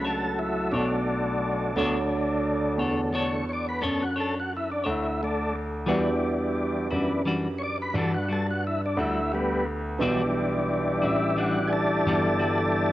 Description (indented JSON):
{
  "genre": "slow blues",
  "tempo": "58 BPM (dotted quarters)",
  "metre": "12/8",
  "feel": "straight",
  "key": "unclear",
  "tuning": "A4 = 439 Hz",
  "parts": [
    { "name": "clean electric guitar", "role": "accompaniment", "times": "0.0-12.6 s", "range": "E3 to C#5", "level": "-31 LUFS", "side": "left 2 dB", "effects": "tremolo, cassette tape" },
    { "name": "tine electric piano", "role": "accompaniment", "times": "0.0-12.9 s", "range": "D4 to C#5", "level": "-34 LUFS", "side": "right 4 dB", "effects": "medium stereo tremolo, cassette tape" },
    { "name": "tonewheel organ", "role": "sustained chords", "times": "0.0-12.9 s", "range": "D3 to D5", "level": "-27 LUFS", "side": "left 1 dB", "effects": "chorus vibrato, wide subtle chorus, cassette tape" },
    { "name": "dark grand piano", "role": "bass", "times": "0.0-12.9 s", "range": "G1 to G2", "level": "-29 LUFS", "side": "equal", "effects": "none" }
  ],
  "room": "moderate lush hall reverb, RT60 2.8 s",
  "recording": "home recording on cassette",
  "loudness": "-24 LUFS",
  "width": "side -15 dB against mid",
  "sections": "0.0-12.9 A section",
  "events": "tonewheel organ solo 0.0-12.9",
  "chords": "0.0 Bm9; 5.9 Em9"
}